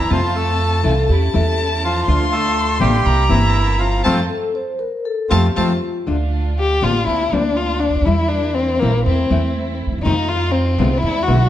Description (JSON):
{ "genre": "tango", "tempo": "121 BPM", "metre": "4/4", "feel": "rubato", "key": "F major, D minor from 6.1 s", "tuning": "A4 = 441 Hz", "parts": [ { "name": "bandoneon", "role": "melody", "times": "0.0-5.7 s", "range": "E3 to A4", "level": "-21 LUFS", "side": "right 1 dB", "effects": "none" }, { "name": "warm violin", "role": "second line", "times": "0.0-11.5 s", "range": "Bb3 to C6", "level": "-20 LUFS", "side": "left 3 dB", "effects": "none" }, { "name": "warm symphonic string section", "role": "stabs", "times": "0.0-11.5 s", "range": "G3 to F4", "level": "-27 LUFS", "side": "right 3 dB", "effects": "none" }, { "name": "upright bass", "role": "bass", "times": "0.0-11.5 s", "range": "G1 to F2", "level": "-18 LUFS", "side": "right 1 dB", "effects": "none" }, { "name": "nylon-string guitar", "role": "accompaniment", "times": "0.1-11.4 s", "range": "B2 to F4", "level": "-22 LUFS", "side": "left 4 dB", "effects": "none" }, { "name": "vibraphone with soft mallets", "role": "second line", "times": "0.8-6.0 s", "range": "F4 to C5", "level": "-23 LUFS", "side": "left 4 dB", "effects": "none" } ], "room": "moderate recital hall reverb, RT60 1.4 s", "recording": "nothing above 10.6 kHz", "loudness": "-15 LUFS", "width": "side -12 dB against mid", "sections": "0.0-6.1 A section; 6.1-11.5 B section", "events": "band accent 4.0-6.1; violin solo 6.1-11.5", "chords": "0.1 F; 1.1 A/E; 2.1 Dm; 3.1 C7; 4.0 F; 6.1 Dm; 7.1 Bbadd9/D; 8.1 Edim; 9.1 Am/E; 10.0 F7", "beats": "| 0.10 0.60 1.09 1.58 | 2.07 2.56 3.05 3.55 | 4.04 4.54 5.05 5.56 | 6.07 6.57 7.07 7.57 | 8.07 8.56 9.05 9.55 | 10.04 10.54 11.03" }